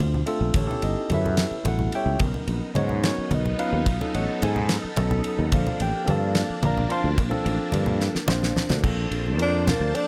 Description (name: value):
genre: electric jazz fusion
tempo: 72 BPM (dotted quarters)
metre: 6/8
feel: straight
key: unclear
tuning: A4 = 440 Hz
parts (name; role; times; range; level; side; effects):
- tine electric piano; accompaniment; 0.0-10.1 s; F3 to C6; -30 LUFS; equal; none
- sustaining fretless electric bass; bass; 0.0-9.9 s; G1 to Ab2; -28 LUFS; equal; none
- congas; percussion; 0.0-9.8 s; none; -31 LUFS; equal; none
- damped 70s drum kit; drums; 0.3-10.1 s; crash cymbal, kick drum, ride cymbal, snare drum; -32 LUFS; equal; none
- phased string machine; sustained chords; 2.2-10.1 s; Bb3 to A5; -36 LUFS; equal; ensemble chorus, phaser
- breathy tenor saxophone; melody; 9.4-10.1 s; Bb3 to D4; -27 LUFS; equal; none
room: light reverb, small room ambience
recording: none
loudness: -24 LUFS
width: mono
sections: 0.0-8.8 A section; 8.8-10.1 A section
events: drum fill 8.0-8.8; tenor saxophone solo 8.8-10.1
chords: 0.0 Dm7; 0.6 A9; 2.2 Bmaj9; 3.9 B9; 5.5 Bbmaj9